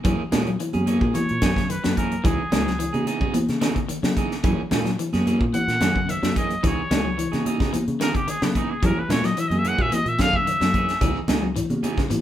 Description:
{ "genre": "afrobeat", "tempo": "110 BPM", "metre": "4/4", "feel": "straight", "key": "unclear", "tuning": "A4 = 440 Hz", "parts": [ { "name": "electric guitar at the edge of break-up", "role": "stabs", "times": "0.0-12.0 s", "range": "E3 to G#4", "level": "-29 LUFS", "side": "right 4 dB", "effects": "none" }, { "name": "fingered electric bass", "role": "bass", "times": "0.0-12.1 s", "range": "C#2 to C#3", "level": "-28 LUFS", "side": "equal", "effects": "none" }, { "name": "tight funk drum kit", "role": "drums", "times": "0.0-12.2 s", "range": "hi-hat, kick drum, snare drum", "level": "-26 LUFS", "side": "equal", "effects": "none" }, { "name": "electric guitar at the edge of break-up", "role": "arpeggios", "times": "0.1-12.2 s", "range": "C#3 to G#3", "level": "-28 LUFS", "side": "left 5 dB", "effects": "none" }, { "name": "congas", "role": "percussion", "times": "0.1-12.2 s", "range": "none", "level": "-26 LUFS", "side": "equal", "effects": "none" }, { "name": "clear trumpet", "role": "melody", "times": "1.1-11.2 s", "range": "B3 to F#5", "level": "-25 LUFS", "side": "equal", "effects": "none" }, { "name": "shekere", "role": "percussion", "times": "11.0-12.2 s", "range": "none", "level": "-32 LUFS", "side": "left 2 dB", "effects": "none" } ], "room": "moderate studio reverb, RT60 0.7 s", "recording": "band playing live in one room", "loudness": "-20 LUFS", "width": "side -11 dB against mid", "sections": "0.0-12.2 A section", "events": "trumpet solo 0.0-12.2", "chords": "0.1 F#9; 2.2 C#m9; 4.4 F#9; 6.6 C#m9; 8.8 F#9; 11.0 C#m9" }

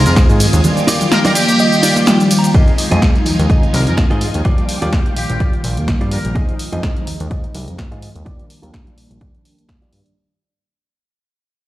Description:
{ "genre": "filtered disco house", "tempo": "126 BPM", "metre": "4/4", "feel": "swing 55% on 16ths", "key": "Eb major", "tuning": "A4 = 442 Hz", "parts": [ { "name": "mellow synth brass", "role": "accompaniment", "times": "0.0-10.1 s", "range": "Eb3 to Eb4", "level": "-18 LUFS", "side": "equal", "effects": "chorus, phaser, cassette tape, sidechain pumping, low-pass filter" }, { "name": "phased string machine", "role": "sustained chords", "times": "0.0-6.3 s", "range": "Eb4 to D6", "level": "-24 LUFS", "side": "equal", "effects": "ensemble chorus, phaser, vintage 12-bit sampler grit, sidechain pumping, low-pass filter" }, { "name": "clean electric guitar", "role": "riff", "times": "0.0-10.0 s", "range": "Eb4 to Bb5", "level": "-21 LUFS", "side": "right 2 dB", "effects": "harmonic tremolo, sidechain pumping, low-pass filter" }, { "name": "fat analog bass", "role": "bass", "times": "0.0-10.0 s", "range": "Bb1 to Ab2", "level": "-17 LUFS", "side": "equal", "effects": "sidechain pumping, low-pass filter" }, { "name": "muted trumpet section", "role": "melody", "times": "0.1-6.4 s", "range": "G4 to Bb4", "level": "-21 LUFS", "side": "left 1 dB", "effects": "sidechain pumping, low-pass filter, dub echo" }, { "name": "punchy analog drum machine", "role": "drums", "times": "0.1-10.1 s", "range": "hi-hat, ride cymbal, rim click, shaker, snare drum", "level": "-20 LUFS", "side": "equal", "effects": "sidechain pumping on hats, sidechain pumping on perc, sidechain pumping on cymbals" }, { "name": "tambourine and congas", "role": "percussion", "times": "0.1-10.2 s", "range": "none", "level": "-24 LUFS", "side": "right 1 dB", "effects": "sidechain pumping on perc, low-pass filter on perc" }, { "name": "electronic kick drum", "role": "drums", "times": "0.2-9.8 s", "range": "none", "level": "-15 LUFS", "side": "equal", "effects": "none" } ], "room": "light reverb, digital ambience", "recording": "played on a big sound system in a bare room, stone room reverb", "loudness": "-12 LUFS", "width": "side -15 dB against mid", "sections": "0.0-2.5 A section; 2.5-10.2 B section", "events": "drop 0.0-2.5; clean electric guitar fill 1.1-2.5; fade-out 2.5-10.2; filter sweep 2.5-10.2", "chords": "0.0 Fm7; 0.6 Ebmaj9; 2.5 Fm7; 4.5 Ebmaj9; 6.4 Fm7; 8.3 Ebmaj9" }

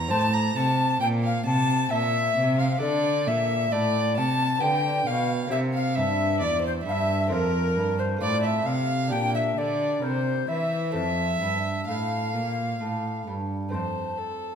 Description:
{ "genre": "classical, baroque-style sonata movement with continuo", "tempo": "66 BPM", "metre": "3/4", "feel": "straight", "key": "F major", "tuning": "A4 = 440 Hz", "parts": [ { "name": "alto recorder", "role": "melody", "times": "0.0-14.6 s", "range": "Bb4 to Bb5", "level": "-27 LUFS", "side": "left 6 dB", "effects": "none" }, { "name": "warm violin", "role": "second line", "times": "0.0-14.6 s", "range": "A4 to Bb5", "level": "-30 LUFS", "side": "right 6 dB", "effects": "none" }, { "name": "lute", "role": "accompaniment", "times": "0.0-14.6 s", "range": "E2 to C5", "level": "-32 LUFS", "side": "right 1 dB", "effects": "none" }, { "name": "rich cello", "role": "bass", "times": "0.0-14.6 s", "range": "E2 to E3", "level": "-27 LUFS", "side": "right 1 dB", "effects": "none" } ], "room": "wet recital hall reverb, RT60 1.4 s", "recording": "none", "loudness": "-22 LUFS", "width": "side -7 dB against mid", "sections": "0.0-13.7 A section", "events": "none", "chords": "0.1 Gm11/A (rootless); 2.8 D5; 4.6 G7/D; 5.5 C7; 7.3 F; 8.2 F/A; 9.1 Gm/Bb; 10.0 C7; 10.9 F" }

